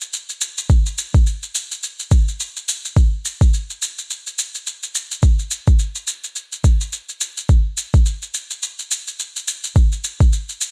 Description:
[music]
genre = downtempo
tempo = 106 BPM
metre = 4/4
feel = swing 58% on 16ths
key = none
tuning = none
[part]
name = shaker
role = drums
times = 0.0-10.7 s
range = none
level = -26 LUFS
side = equal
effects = overdrive
[part]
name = electronic kick drum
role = drums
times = 0.7-10.3 s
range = none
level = -16 LUFS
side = equal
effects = overdrive
[sound]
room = little or no reverb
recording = none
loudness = -20 LUFS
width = mono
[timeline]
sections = 0.0-10.7 A section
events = none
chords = none

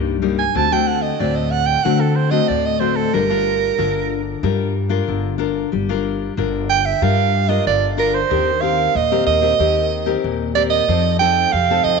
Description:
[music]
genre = samba and choro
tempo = 93 BPM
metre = 4/4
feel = straight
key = G minor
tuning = A4 = 439 Hz
[part]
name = nylon-string guitar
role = accompaniment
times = 0.0-12.0 s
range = G2 to Bb4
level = -20 LUFS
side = left 11 dB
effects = none
[part]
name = upright bass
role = bass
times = 0.0-12.0 s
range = G1 to D3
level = -22 LUFS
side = equal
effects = none
[part]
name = breathy soprano saxophone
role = melody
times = 0.4-12.0 s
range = A4 to A5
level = -18 LUFS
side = right 10 dB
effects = none
[sound]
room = wet plate reverb, RT60 2.8 s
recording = 1960s-style stereo with parts hard left and right, nothing above 7.8 kHz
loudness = -15 LUFS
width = side -4 dB against mid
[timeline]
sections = 0.0-8.3 A section; 8.3-12.0 B section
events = soprano saxophone solo 0.0-8.3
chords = 0.0 Cm7; 0.5 D7; 3.1 Gm7; 8.3 Eb6; 10.9 F7

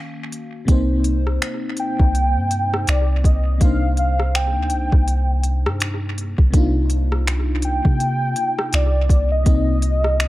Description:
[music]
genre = contemporary R&B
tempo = 82 BPM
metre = 4/4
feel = swing 58% on 16ths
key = C minor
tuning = A4 = 440 Hz
[part]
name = FM electric piano with soft pad layer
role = accompaniment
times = 0.0-10.3 s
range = C3 to F5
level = -25 LUFS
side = left 2 dB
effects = chorus, tremolo, analog delay
[part]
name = smooth R&B drum kit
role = drums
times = 0.3-10.3 s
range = finger snaps, hi-hat, kick drum, rim click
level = -19 LUFS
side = equal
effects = overdrive
[part]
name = soft 808-style bass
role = bass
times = 0.7-10.3 s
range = C2 to C3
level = -19 LUFS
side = equal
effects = none
[part]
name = warm velvety synth lead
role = melody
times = 1.8-10.3 s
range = D5 to G5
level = -23 LUFS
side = equal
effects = chorus, analog delay
[sound]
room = digital ambience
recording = echo-heavy mix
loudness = -16 LUFS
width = side -17 dB against mid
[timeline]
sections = 0.7-10.3 A section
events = break 0.0-0.7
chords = 0.0 Ebm9; 0.7 Cm9

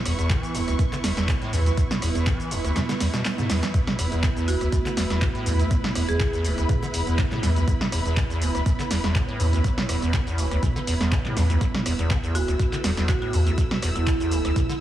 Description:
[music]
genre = acid house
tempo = 122 BPM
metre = 4/4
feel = swing 54% on 16ths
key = unclear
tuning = A4 = 439 Hz
[part]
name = dark analog pad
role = sustained chords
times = 0.0-14.8 s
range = A3 to E5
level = -33 LUFS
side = right 2 dB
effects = chorus, sidechain pumping
[part]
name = warm symphonic string section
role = texture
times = 0.0-14.8 s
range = E4 to E6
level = -32 LUFS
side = right 2 dB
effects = sidechain pumping
[part]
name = acid bass, square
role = riff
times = 0.1-14.7 s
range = D2 to E3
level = -26 LUFS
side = equal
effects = tube saturation, lush chorus, tape echo
[part]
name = saturated sub bass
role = bass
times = 0.1-14.5 s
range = E1 to E2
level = -26 LUFS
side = equal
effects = sidechain pumping
[part]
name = punchy analog drum machine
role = drums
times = 0.1-14.8 s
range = handclaps, hi-hat, rim click, shaker, snare drum, toms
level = -28 LUFS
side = right 1 dB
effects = none
[part]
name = electronic kick drum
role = drums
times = 0.3-14.7 s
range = none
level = -24 LUFS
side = equal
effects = overdrive
[part]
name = marimba with medium hard mallets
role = melody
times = 4.5-6.4, 12.3-14.2 s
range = E4 to G#4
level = -30 LUFS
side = right 3 dB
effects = tape echo
[sound]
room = light reverb, digital ambience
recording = heavily compressed radio sound, multiband compression, small room ambience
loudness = -21 LUFS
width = side -12 dB against mid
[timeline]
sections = 0.0-14.8 A section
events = drum fill 2.8-3.7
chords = 0.0 E5

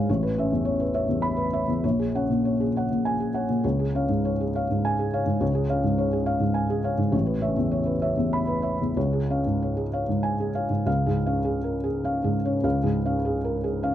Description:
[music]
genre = neoclassical minimalist piano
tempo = 92-105 BPM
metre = 3/4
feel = rubato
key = Db major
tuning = A4 = 441 Hz
[part]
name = felt-muted upright piano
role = solo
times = 0.0-13.9 s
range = A1 to B5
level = -22 LUFS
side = equal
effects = none
[sound]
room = light reverb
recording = dry, close 1970s-style studio recording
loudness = -22 LUFS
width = side -11 dB against mid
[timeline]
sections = 0.0-10.9 A section; 10.9-13.9 B section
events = none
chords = 0.1 Aadd9; 1.8 Gbadd9/Bb; 3.6 Db; 7.1 Aadd9; 9.0 Db

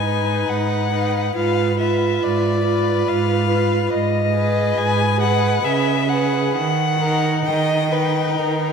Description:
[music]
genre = classical, slow romantic movement for string quartet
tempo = 65-72 BPM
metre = 3/4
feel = rubato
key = G# minor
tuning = A4 = 440 Hz
[part]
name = clear violin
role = melody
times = 0.0-8.7 s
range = D5 to G#5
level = -23 LUFS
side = left 6 dB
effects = none
[part]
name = clear violin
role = second line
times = 0.0-8.7 s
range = A#4 to D#5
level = -23 LUFS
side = left 2 dB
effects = none
[part]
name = clear viola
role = accompaniment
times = 0.0-8.7 s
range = D#4 to G#4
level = -23 LUFS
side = right 2 dB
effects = none
[part]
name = clear cello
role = bass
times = 0.0-8.7 s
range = G#2 to D#3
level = -21 LUFS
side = right 4 dB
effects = none
[sound]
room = wet cathedral reverb, RT60 5.1 s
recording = in a vast, echoing space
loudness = -17 LUFS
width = side -6 dB against mid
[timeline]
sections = 0.0-8.7 A section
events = none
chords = 0.0 G#m; 1.4 G#dim7; 3.9 G#m; 5.6 C#m7; 6.5 D#

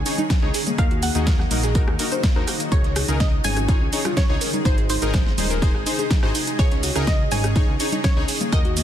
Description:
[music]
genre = progressive house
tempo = 124 BPM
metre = 4/4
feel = straight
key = unclear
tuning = A4 = 440 Hz
[part]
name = wide unison pluck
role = melody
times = 0.0-8.8 s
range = C5 to Ab5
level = -31 LUFS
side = right 1 dB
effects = sidechain pumping, tape echo
[part]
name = soft round pluck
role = second line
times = 0.0-8.8 s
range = C5 to Ab5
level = -38 LUFS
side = left 2 dB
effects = none
[part]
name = shimmering ambient pad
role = sustained chords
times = 0.0-8.8 s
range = Bb2 to Ab4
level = -30 LUFS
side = equal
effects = chorus, built-in reverb, sidechain pumping
[part]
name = fat analog bass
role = bass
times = 0.0-8.8 s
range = Eb1 to Eb2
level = -25 LUFS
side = equal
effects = sidechain pumping
[part]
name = soft round pluck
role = arpeggios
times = 0.1-8.8 s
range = Bb3 to C5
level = -28 LUFS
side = equal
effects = chorus, sidechain pumping, tape echo
[part]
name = soft supersaw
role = stabs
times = 0.1-8.6 s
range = Eb4 to Db5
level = -29 LUFS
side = left 2 dB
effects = sidechain pumping, tape echo
[part]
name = dusty soul sampler-style drum kit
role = drums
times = 0.1-8.8 s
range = hi-hat, snare drum, tambourine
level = -36 LUFS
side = left 2 dB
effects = none
[part]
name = pop drum kit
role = drums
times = 0.1-8.8 s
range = cabasa, hi-hat, snare drum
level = -27 LUFS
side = right 2 dB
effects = overdrive, sidechain pumping on hats, sidechain pumping on perc, sidechain pumping on toms
[part]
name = electronic congas and rim click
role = percussion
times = 0.1-8.6 s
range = none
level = -32 LUFS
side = left 5 dB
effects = soft clipping on snare, sidechain pumping on snare, sidechain pumping on perc
[part]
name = electronic kick drum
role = drums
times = 0.3-8.6 s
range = none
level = -20 LUFS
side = equal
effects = overdrive
[sound]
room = light reverb, digital ambience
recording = dense, heavily limited modern master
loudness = -18 LUFS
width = side -10 dB against mid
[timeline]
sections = 0.0-8.8 A section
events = none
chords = 0.0 Dbsus2; 0.8 Ebm; 2.7 Dbsus2; 4.7 Ab; 6.6 Dbsus2

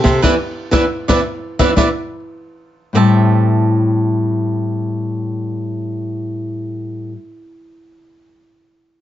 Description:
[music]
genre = samba and choro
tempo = 88 BPM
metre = 4/4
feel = straight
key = A minor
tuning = A4 = 440 Hz
[part]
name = cavaquinho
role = accompaniment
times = 0.0-7.2 s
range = G4 to A5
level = -21 LUFS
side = right 6 dB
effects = none
[part]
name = nylon-string guitar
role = accompaniment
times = 0.0-7.2 s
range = A2 to G4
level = -19 LUFS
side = left 4 dB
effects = none
[part]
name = nylon-string guitar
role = bass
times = 0.0-7.1 s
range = A2 to E3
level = -18 LUFS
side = equal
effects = none
[part]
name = jazz brush drum kit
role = drums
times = 0.1-1.9 s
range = kick drum, ride cymbal, rim click, snare drum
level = -18 LUFS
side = equal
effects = none
[sound]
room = moderate studio reverb, RT60 0.8 s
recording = nothing above 7.6 kHz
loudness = -14 LUFS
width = side -12 dB against mid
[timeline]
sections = 0.0-2.9 A section; 2.9-5.7 B section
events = band accent 0.2-2.9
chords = 0.2 E5; 2.9 Am7

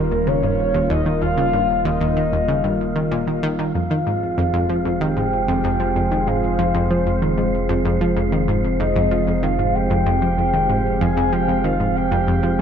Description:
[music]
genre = ambient, sequencer-driven space music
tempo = 95 BPM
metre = 4/4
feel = straight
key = F minor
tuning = A4 = 440 Hz
[part]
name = soft octave-layered synth lead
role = melody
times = 0.0-12.6 s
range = Bb4 to Ab5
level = -22 LUFS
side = left 1 dB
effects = chorus, phaser, ping-pong delay
[part]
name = sweeping resonant pad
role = sustained chords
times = 0.0-12.6 s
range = Eb3 to C5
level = -23 LUFS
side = right 1 dB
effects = chorus
[part]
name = analog pluck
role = riff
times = 0.0-12.6 s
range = Eb2 to F3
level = -22 LUFS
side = equal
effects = chorus, ping-pong delay
[part]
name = warm sub bass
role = bass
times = 0.0-12.6 s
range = Eb1 to F1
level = -27 LUFS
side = equal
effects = none
[part]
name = wind-like tuned noise texture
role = texture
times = 0.0-12.6 s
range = F5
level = -34 LUFS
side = right 5 dB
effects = built-in reverb
[sound]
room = moderate plate reverb, RT60 2.6 s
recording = none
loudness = -17 LUFS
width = side -8 dB against mid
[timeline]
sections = 0.0-12.6 A section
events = none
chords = 0.0 Eb; 3.7 Fm

